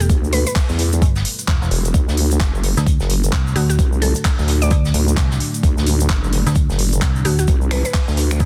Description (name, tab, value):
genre	bass house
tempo	130 BPM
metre	4/4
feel	swing 60% on 16ths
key	unclear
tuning	A4 = 442 Hz
part	mallet-like synth pluck	melody	0.0-0.5, 3.6-7.9 s	F#4 to D5	-28 LUFS	equal	chorus, digital delay
part	dark analog pad	sustained chords	0.0-8.5 s	G3 to D5	-30 LUFS	equal	none
part	metallic FM bass	bass	0.0-8.5 s	E1 to D2	-21 LUFS	equal	sidechain pumping
part	garage drum kit	drums	0.0-8.5 s	finger snaps, handclaps, hi-hat	-28 LUFS	equal	none
part	vintage brush drum kit	drums	0.0-8.5 s	hi-hat, snare drum	-35 LUFS	equal	high-pass filter on hats, high-pass filter on snare, high-pass filter on room
part	tube shaker	percussion	0.0-8.5 s	none	-33 LUFS	equal	none
part	vowel-sweep wobble bass	bass	0.1-8.4 s	E1 to E2	-20 LUFS	equal	chorus, overdrive, sidechain pumping
part	electronic kick drum	drums	0.1-8.5 s	none	-19 LUFS	equal	overdrive
part	swell	sound effects	8.4-8.5 s	none	barely audible	none	none
room	little or no reverb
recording	dense, heavily limited modern master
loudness	-17 LUFS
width	mono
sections	0.0-8.5 A section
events	none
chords	0.0 Em; 1.9 D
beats	| 0.10 0.56 1.02 1.48 | 1.94 2.40 2.87 3.33 | 3.79 4.25 4.71 5.17 | 5.63 6.10 6.56 7.02 | 7.48 7.94 8.40